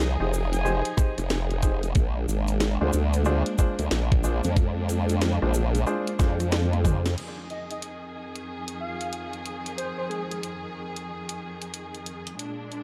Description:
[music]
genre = glitch hop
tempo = 92 BPM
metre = 4/4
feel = swing 63% on 16ths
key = F dorian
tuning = A4 = 440 Hz
[part]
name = clear studio string section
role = sustained chords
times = 0.0-12.8 s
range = F2 to Ab4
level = -36 LUFS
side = equal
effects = sidechain pumping
[part]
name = formant-sweep wobble bass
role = bass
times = 0.0-7.2 s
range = F1 to F2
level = -27 LUFS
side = equal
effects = chorus, overdrive
[part]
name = drum and bass drum kit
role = drums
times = 0.0-12.8 s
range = crash cymbal, hi-hat, rim click, snare drum, toms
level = -33 LUFS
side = equal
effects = small room ambience
[part]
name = egg shaker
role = percussion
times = 0.0-7.2 s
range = none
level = -42 LUFS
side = equal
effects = none
[part]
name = warm baby grand piano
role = stabs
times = 0.2-7.0 s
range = D4 to C5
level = -34 LUFS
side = equal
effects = sidechain pumping, digital delay
[part]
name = sync lead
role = melody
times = 0.5-1.0, 7.5-10.4 s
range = Ab4 to Ab5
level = -38 LUFS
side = equal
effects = lush chorus, cassette tape, digital delay
[part]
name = electronic kick drum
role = drums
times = 1.0-7.0 s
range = none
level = -24 LUFS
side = equal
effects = small room ambience
[sound]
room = light reverb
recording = dark, warm production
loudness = -26 LUFS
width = mono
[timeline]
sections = 0.0-7.2 A section; 7.2-12.8 B section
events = drum fill 6.7-7.2; band accent 7.0-7.3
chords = 0.0 Fm7; 2.0 Bb7; 7.2 Fm7

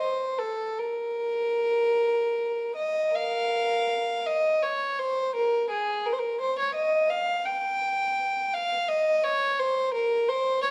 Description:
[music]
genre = classical, baroque-style suite movement for unaccompanied violin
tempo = 74-88 BPM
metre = 3/4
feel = rubato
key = Bb minor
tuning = A4 = 440 Hz
[part]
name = rich violin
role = solo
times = 0.0-10.7 s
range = Ab4 to G5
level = -26 LUFS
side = equal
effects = none
[sound]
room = wet stone room reverb, RT60 1.1 s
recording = dark, warm production, lossy compression artefacts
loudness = -26 LUFS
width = mono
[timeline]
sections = 0.0-3.1 A section; 3.1-10.7 B section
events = none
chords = none

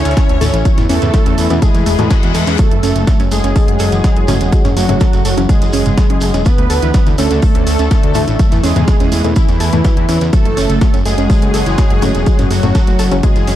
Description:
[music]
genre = melodic techno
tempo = 124 BPM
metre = 4/4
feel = straight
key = F# minor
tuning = A4 = 440 Hz
[part]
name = wide unison lead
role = melody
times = 0.0-13.6 s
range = E3 to C#4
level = -20 LUFS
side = equal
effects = lush chorus, cassette tape, sidechain pumping, ping-pong delay
[part]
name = big bright polysynth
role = second line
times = 0.0-13.6 s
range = E4 to C#5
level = -23 LUFS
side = left 1 dB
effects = analog chorus, sidechain pumping, digital delay
[part]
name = dark analog pad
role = sustained chords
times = 0.0-13.6 s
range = F#3 to B5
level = -24 LUFS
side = equal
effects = chorus, vintage 12-bit sampler grit, sidechain pumping
[part]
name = warbly dusty pluck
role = arpeggios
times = 0.0-13.6 s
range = C#3 to A5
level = -21 LUFS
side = right 2 dB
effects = chorus, sidechain pumping, digital delay
[part]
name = fat analog bass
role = bass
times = 0.0-13.6 s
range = E1 to E2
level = -16 LUFS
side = equal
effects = sidechain pumping
[part]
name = breakbeat sampler-style drum kit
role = drums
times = 0.1-13.6 s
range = hi-hat, snare drum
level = -32 LUFS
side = right 1 dB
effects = none
[part]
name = house drum kit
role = drums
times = 0.1-13.6 s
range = hi-hat, toms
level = -24 LUFS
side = right 1 dB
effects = overdrive
[part]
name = shekere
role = percussion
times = 0.1-13.6 s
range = none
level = -29 LUFS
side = right 2 dB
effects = none
[part]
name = electronic kick drum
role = drums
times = 0.2-13.3 s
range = none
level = -12 LUFS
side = equal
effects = overdrive
[part]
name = filtered dub chord stab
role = stabs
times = 0.4-13.6 s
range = B2 to C#4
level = -21 LUFS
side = left 4 dB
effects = none
[part]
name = reverse cymbal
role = sound effects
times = 1.9-2.6 s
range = none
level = -25 LUFS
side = left 7 dB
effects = none
[sound]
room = little or no reverb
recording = dark, warm production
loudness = -10 LUFS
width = side -12 dB against mid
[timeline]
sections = 0.0-13.6 A section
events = reverse cymbal 1.9-2.6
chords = 0.0 Dsus2; 0.7 Esus4; 2.6 F#m; 6.5 Dsus2; 8.4 Esus4; 10.3 F#m

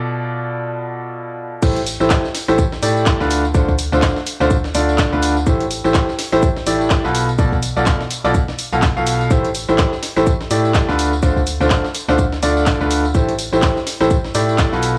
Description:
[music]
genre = piano house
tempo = 125 BPM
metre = 4/4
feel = swing 58% on 16ths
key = A minor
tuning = A4 = 440 Hz
[part]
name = bright grand piano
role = riff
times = 0.0-14.9 s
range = A2 to F5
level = -20 LUFS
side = equal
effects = sidechain pumping, analog delay
[part]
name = organ-like FM bass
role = bass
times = 1.6-15.0 s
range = A1 to A2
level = -26 LUFS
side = equal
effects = sidechain pumping
[part]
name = breakbeat sampler-style drum kit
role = drums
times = 1.6-15.0 s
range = hi-hat, shaker, snare drum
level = -31 LUFS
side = equal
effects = high-pass filter on perc, small room ambience, high-pass filter on hats, high-pass filter on snare
[part]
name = electronic kick drum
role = drums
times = 1.6-14.7 s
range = none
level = -20 LUFS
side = equal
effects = small room ambience
[part]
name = house drum kit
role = drums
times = 1.6-14.9 s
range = crash cymbal, handclaps, hi-hat, tambourine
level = -26 LUFS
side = equal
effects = small room ambience
[sound]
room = digital ambience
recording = dry, gritty hardware recording, small room ambience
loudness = -17 LUFS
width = mono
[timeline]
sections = 0.0-1.6 A section; 1.6-15.0 B section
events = drop 1.6-15.0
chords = 0.0 Bm7b5; 1.6 Am7; 3.3 Dm7; 5.5 Am7; 7.1 Bm7b5; 9.3 Am7; 11.0 Dm7; 13.1 Am7

